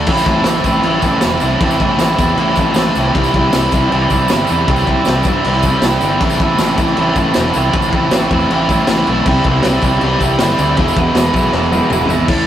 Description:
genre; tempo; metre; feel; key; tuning
garage rock duo or trio; 157 BPM; 4/4; straight; A minor; A4 = 440 Hz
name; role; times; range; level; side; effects
biting overdriven guitar; riff; 0.0-12.5 s; E2 to E4; -14 LUFS; right 1 dB; none
fuzz fingered electric bass; bass; 0.0-12.5 s; E1 to G2; -18 LUFS; left 1 dB; overdrive, tube saturation
raw garage drum kit; drums; 0.1-12.4 s; crash cymbal, kick drum, snare drum, toms; -17 LUFS; equal; none
tambourine; percussion; 0.2-12.4 s; none; -32 LUFS; right 4 dB; none
room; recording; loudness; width
moderate studio reverb, RT60 0.6 s; rough rehearsal-room recording; -11 LUFS; side -11 dB against mid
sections
0.1-12.3 A section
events
drum fill 11.5-12.3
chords
0.1 Am; 3.1 C; 6.2 Am; 9.3 C; 10.8 E

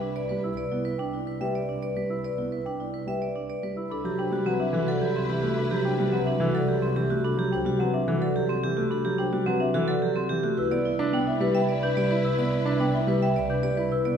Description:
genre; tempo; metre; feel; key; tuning
classical, minimalist pattern music; 108 BPM; 3/4; straight; C lydian; A4 = 440 Hz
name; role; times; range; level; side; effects
marimba with soft mallets; melody; 0.0-14.1 s; A4 to B5; -32 LUFS; left 6 dB; none
warm studio string section; sustained chords; 0.0-0.4, 3.9-7.1, 10.6-13.7 s; E4 to B4; -37 LUFS; left 1 dB; none
vibraphone with medium hard mallets; arpeggios; 0.0-14.2 s; C4 to E5; -29 LUFS; right 4 dB; none
rich double bass; bass; 0.0-14.2 s; C2; -31 LUFS; right 1 dB; none
dark baby grand piano; accompaniment; 0.3-14.2 s; E3 to E4; -29 LUFS; left 1 dB; none
celesta; arpeggios; 0.4-14.1 s; E5 to G6; -35 LUFS; left 2 dB; none
room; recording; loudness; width
wet scoring stage reverb, RT60 1.6 s; heard from further back in the room; -24 LUFS; side -8 dB against mid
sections
0.0-3.9 A section; 3.9-14.2 A section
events
none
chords
0.0 Em/C; 3.9 Cmaj9#11; 10.6 Em/C

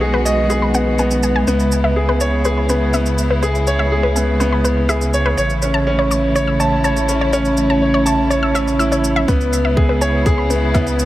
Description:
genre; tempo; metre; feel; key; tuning
piano and strings electronica; 123 BPM; 4/4; straight; C# minor; A4 = 440 Hz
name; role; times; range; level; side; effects
warm symphonic string section; sustained chords; 0.0-11.1 s; C#3 to F#4; -21 LUFS; right 1 dB; sidechain pumping
bright grand piano; riff; 0.0-11.1 s; B3 to A5; -18 LUFS; equal; tape echo
warm sub bass; bass; 0.0-11.1 s; A1 to C#2; -20 LUFS; equal; sidechain pumping
wide unison pluck; arpeggios; 0.1-10.8 s; B4 to E6; -23 LUFS; left 1 dB; sidechain pumping, tape echo
shaker; drums; 0.3-11.1 s; none; -27 LUFS; right 2 dB; none
electronic kick drum; drums; 9.3-10.8 s; none; -16 LUFS; equal; none
room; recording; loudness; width
light reverb, digital ambience; none; -14 LUFS; side -15 dB against mid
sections
0.0-9.3 A section; 9.3-11.1 B section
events
build-up 9.3-11.1; filter sweep on synth arpeggio sound 9.3-11.1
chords
0.0 G#m7/B; 1.5 C#m7; 5.4 A; 9.3 C#m7

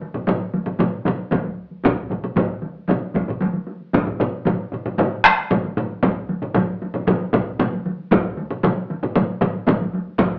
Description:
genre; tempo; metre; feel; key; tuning
japanese traditional, taiko drum ensemble; 115 BPM; 4/4; straight; none; none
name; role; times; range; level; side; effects
taiko ensemble; percussion; 0.0-10.4 s; none; -24 LUFS; equal; none
taiko ensemble; percussion; 0.1-10.3 s; none; -22 LUFS; equal; none
taiko ensemble; percussion; 0.1-10.3 s; none; -21 LUFS; equal; none
taiko ensemble; percussion; 1.3-10.3 s; none; -23 LUFS; equal; none
room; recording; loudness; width
wet studio reverb, RT60 0.6 s; band playing live in one room, AM radio sound; -18 LUFS; side -33 dB against mid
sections
0.0-10.4 A section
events
none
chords
none

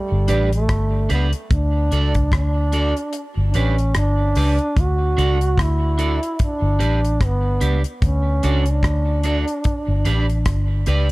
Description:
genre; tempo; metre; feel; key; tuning
roots reggae; 74 BPM; 4/4; swing 57% on 16ths; unclear; A4 = 439 Hz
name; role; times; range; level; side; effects
breathy trombone; melody; 0.0-10.9 s; G3 to F#4; -24 LUFS; right 1 dB; tape echo
vintage muted fingered electric bass; bass; 0.1-11.1 s; G1 to D2; -18 LUFS; equal; none
electric guitar at the edge of break-up; accompaniment; 0.3-11.1 s; D4 to D5; -27 LUFS; right 4 dB; lush chorus, tape echo
damped 70s drum kit; drums; 0.3-11.1 s; hi-hat, kick drum, rim click; -21 LUFS; equal; none
room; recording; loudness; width
small room ambience; dark, warm production; -17 LUFS; side -21 dB against mid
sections
0.0-11.1 A section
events
kick muted 3.1-4.8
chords
0.0 G; 1.5 D; 3.1 G; 4.8 D; 6.4 G; 8.0 D; 9.6 G

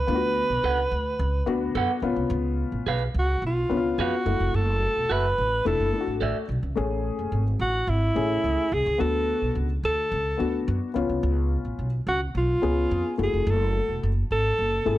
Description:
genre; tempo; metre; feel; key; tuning
soul; 108 BPM; 4/4; straight; A major; A4 = 440 Hz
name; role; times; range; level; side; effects
warm alto saxophone; melody; 0.0-15.0 s; E4 to B4; -25 LUFS; right 1 dB; none
upright bass; bass; 0.0-15.0 s; E1 to F#2; -26 LUFS; equal; none
dark upright piano; accompaniment; 0.1-15.0 s; A3 to A4; -28 LUFS; left 5 dB; none
electric guitar through a small old amp; stabs; 0.6-6.4 s; F#4 to F#5; -29 LUFS; right 6 dB; none
room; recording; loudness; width
light reverb, small room ambience; none; -22 LUFS; side -14 dB against mid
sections
0.0-6.8 A section; 6.8-15.0 A section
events
none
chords
0.1 D6; 2.0 C#7; 4.3 F#m7; 5.7 E7sus4; 6.8 Amaj7; 9.0 D6; 11.0 C#7; 13.2 F#m7

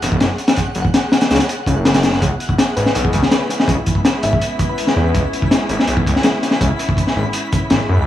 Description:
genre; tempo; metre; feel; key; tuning
drum and bass, jungle; 164 BPM; 4/4; straight; C# minor; A4 = 440 Hz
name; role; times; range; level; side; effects
detuned saw bass; bass; 0.0-8.1 s; E1 to F#2; -18 LUFS; equal; none
crunchy breakbeat drum kit; drums; 0.0-7.8 s; hi-hat, kick drum, snare drum; -15 LUFS; left 1 dB; none
twinkling granular texture; texture; 0.0-8.1 s; F#5 to B5; -30 LUFS; equal; built-in reverb
dark studio string section; sustained chords; 2.2-8.1 s; G#3 to E4; -24 LUFS; left 1 dB; none
soft struck synth lead; melody; 2.8-5.2 s; G#4 to E5; -24 LUFS; left 2 dB; chorus, dub echo
room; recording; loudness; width
light reverb, studio reverb; vinyl crackle, small room ambience; -14 LUFS; side -12 dB against mid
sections
0.0-8.1 A section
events
none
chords
0.0 F#7(no3); 2.2 C#m7

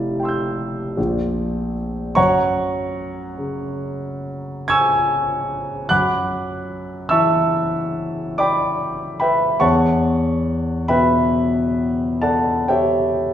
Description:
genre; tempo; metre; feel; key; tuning
classical, impressionist solo piano; 40-52 BPM (dotted quarters); 9/8; rubato; D major; A4 = 440 Hz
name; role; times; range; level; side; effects
warm concert grand piano; solo; 0.0-13.3 s; F1 to G#6; -17 LUFS; equal; none
room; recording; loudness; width
wet recital hall reverb, RT60 1.7 s; heard from further back in the room; -17 LUFS; side -10 dB against mid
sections
0.0-13.3 A section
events
none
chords
0.0 Fmaj9; 1.0 Bb; 2.2 F#7; 5.9 Dadd9/F#; 9.6 Em7

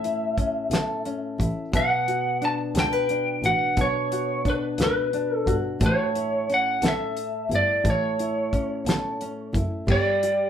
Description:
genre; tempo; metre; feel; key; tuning
six-eight pop ballad; 59 BPM (dotted quarters); 6/8; straight; unclear; A4 = 441 Hz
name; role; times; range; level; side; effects
lightly driven lead guitar; melody; 0.0-10.5 s; B4 to A5; -24 LUFS; right 1 dB; slapback echo
nylon-string guitar; accompaniment; 0.0-10.5 s; A2 to B4; -28 LUFS; left 2 dB; none
damped 70s drum kit; drums; 0.0-10.4 s; crash cymbal, hi-hat, kick drum, snare drum; -26 LUFS; equal; none
warm double bass; bass; 0.7-10.0 s; F#1 to C#2; -29 LUFS; equal; none
room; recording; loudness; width
moderate studio ambience, RT60 0.5 s; band playing live in one room; -22 LUFS; side -9 dB against mid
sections
0.0-9.9 A section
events
none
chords
0.0 A; 1.7 Bm; 5.8 F#m7 (rootless); 9.9 Gsus2

